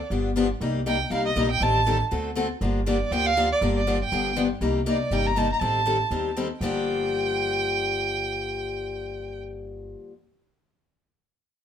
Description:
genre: acoustic string swing (jazz manouche).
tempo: 240 BPM.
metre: 4/4.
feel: swing 56% on 8ths.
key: G minor.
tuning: A4 = 440 Hz.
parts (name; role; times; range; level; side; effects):
warm violin; melody; 0.0-9.4 s; D5 to Bb5; -26 LUFS; right 3 dB; none.
picked steel-string acoustic guitar; accompaniment; 0.1-10.1 s; G2 to A4; -26 LUFS; left 4 dB; none.
upright bass; bass; 0.1-9.9 s; G1 to Eb2; -30 LUFS; right 1 dB; none.
room: moderate studio reverb, RT60 0.7 s.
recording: minimal, uncompressed stereo recording.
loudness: -22 LUFS.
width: side -9 dB against mid.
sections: 0.0-4.6 A section; 4.6-6.6 B section; 6.6-8.6 C section.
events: none.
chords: 0.1 G7; 0.6 Cm7; 1.6 Am7b5; 2.1 D7; 2.6 Gm7; 4.1 G7; 4.6 Cm9; 5.6 Am7b5; 6.6 Gm7.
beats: 0.11 0.36 | 0.61 0.86 1.11 1.36 | 1.61 1.86 2.12 2.37 | 2.62 2.87 3.12 3.37 | 3.62 3.87 4.12 4.37 | 4.62 4.87 5.12 5.37 | 5.62 5.87 6.12 6.37 | 6.62 6.87 7.12 7.37 | 7.62 7.87 8.12 8.37.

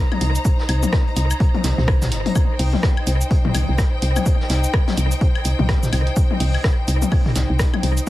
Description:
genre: minimal techno.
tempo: 126 BPM.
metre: 4/4.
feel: swing 60% on 16ths.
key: C minor.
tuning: A4 = 440 Hz.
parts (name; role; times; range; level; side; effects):
rich symphonic string section; texture; 0.0-8.1 s; Eb4 to Bb5; -27 LUFS; left 1 dB; sidechain pumping.
electronic toms and woodblock; percussion; 0.1-7.8 s; none; -25 LUFS; left 3 dB; dub echo.
woody FM bass; bass; 0.2-8.0 s; G1 to C2; -19 LUFS; equal; sidechain pumping.
punchy analog drum machine; drums; 0.2-8.1 s; hi-hat, rim click, shaker; -28 LUFS; equal; dub echo.
vintage brush drum kit; drums; 0.2-8.0 s; hi-hat, snare drum; -35 LUFS; equal; sidechain pumping on hats, high-pass filter on hats, high-pass filter on snare, high-pass filter on room.
electronic kick drum; drums; 0.5-7.7 s; none; -18 LUFS; equal; none.
room: light reverb.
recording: echo-heavy mix.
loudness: -16 LUFS.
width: side -16 dB against mid.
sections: 0.0-8.1 A section.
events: none.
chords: 0.0 Cm7.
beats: | 0.45 0.93 1.40 1.88 | 2.35 2.83 3.31 3.78 | 4.26 4.74 5.21 5.69 | 6.16 6.64 7.12 7.59 | 8.07.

